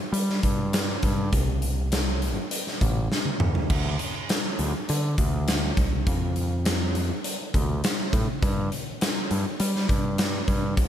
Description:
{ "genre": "classic rock", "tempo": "101 BPM", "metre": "4/4", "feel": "straight", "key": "unclear", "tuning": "A4 = 440 Hz", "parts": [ { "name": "growling picked electric bass", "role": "bass", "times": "0.1-10.9 s", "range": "A1 to G3", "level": "-26 LUFS", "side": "equal", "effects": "overdrive" }, { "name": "big rock drum kit", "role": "drums", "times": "0.1-10.9 s", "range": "crash cymbal, hi-hat, kick drum, snare drum, toms", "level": "-25 LUFS", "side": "equal", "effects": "none" } ], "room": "light reverb", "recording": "none", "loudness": "-23 LUFS", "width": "side -10 dB against mid", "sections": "0.0-10.9 A section", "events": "drum fill 3.1-3.7", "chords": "none" }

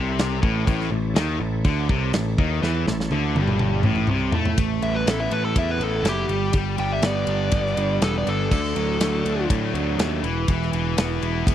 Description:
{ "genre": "classic rock", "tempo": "122 BPM", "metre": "4/4", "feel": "straight", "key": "A major", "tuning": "A4 = 439 Hz", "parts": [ { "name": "overdriven tonewheel organ", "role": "sustained chords", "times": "0.0-4.5 s", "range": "E4 to E5", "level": "-38 LUFS", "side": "equal", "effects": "none" }, { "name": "distorted electric guitar", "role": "riff", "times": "0.0-11.5 s", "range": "G2 to A4", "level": "-27 LUFS", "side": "left 10 dB", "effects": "overdrive" }, { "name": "overdriven semi-hollow guitar", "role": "riff", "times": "0.0-11.5 s", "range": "G2 to A4", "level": "-29 LUFS", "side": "right 11 dB", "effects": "none" }, { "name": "modern bright picked electric bass", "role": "bass", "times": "0.0-11.5 s", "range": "E1 to A2", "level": "-25 LUFS", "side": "equal", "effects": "none" }, { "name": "big rock drum kit", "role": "drums", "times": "0.2-11.5 s", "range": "crash cymbal, kick drum, ride cymbal, snare drum, toms", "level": "-24 LUFS", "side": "equal", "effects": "none" }, { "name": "nasal lead guitar with a parked wah", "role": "melody", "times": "4.8-9.5 s", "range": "G4 to G5", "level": "-26 LUFS", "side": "equal", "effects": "overdrive, slapback echo" } ], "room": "little or no reverb", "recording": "dry, close 1970s-style studio recording", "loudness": "-20 LUFS", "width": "side -11 dB against mid", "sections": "0.0-4.6 A section; 4.6-11.5 B section", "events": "drum fill 2.6-4.6; lead electric guitar solo 4.6-11.5", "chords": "0.0 A; 4.6 Asus2; 6.3 G; 8.5 D; 10.2 E5" }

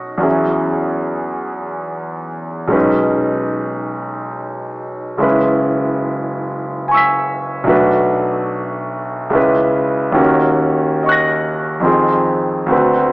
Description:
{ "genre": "classical, impressionist solo piano", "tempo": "72 BPM", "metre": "3/4", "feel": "rubato", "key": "unclear", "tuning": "A4 = 440 Hz", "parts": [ { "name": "clear concert grand piano", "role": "solo", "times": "0.0-13.1 s", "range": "F#1 to B6", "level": "-14 LUFS", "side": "equal", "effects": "none" } ], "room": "moderate concert hall reverb, RT60 1.9 s", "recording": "small speaker sound", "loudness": "-14 LUFS", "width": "side -23 dB against mid", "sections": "0.0-13.1 A section", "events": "none", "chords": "0.2 E69; 2.7 B69; 5.2 F#11; 7.7 Bm7; 9.4 C#m7; 10.2 Ebm7; 11.9 Fm7" }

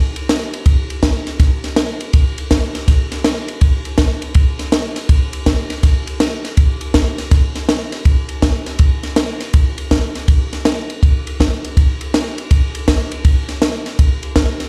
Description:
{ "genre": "rock", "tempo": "162 BPM", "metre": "4/4", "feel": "swing 65% on 8ths", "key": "none", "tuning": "none", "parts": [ { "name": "compact cocktail drum kit", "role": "drums", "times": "0.2-14.7 s", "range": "kick drum, ride cymbal, snare drum", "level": "-16 LUFS", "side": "equal", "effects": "none" } ], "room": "light reverb", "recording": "live gig heard through the venue's PA, club reverb", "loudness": "-16 LUFS", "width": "mono", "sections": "0.0-14.7 A section", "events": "none", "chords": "none" }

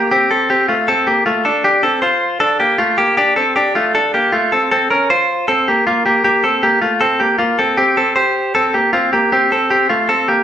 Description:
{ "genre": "indie pop", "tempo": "156 BPM", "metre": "4/4", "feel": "straight", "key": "F major", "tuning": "A4 = 441 Hz", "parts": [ { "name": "direct-recorded clean electric guitar", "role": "solo", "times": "0.0-10.4 s", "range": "A3 to C5", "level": "-12 LUFS", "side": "equal", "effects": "none" } ], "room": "wet large studio reverb, RT60 0.9 s", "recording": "band playing live in one room", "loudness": "-12 LUFS", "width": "side -10 dB against mid", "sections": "0.0-10.4 A section", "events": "none", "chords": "0.0 Fadd9; 1.4 Dm; 4.7 Bbsus2; 7.8 Fadd9" }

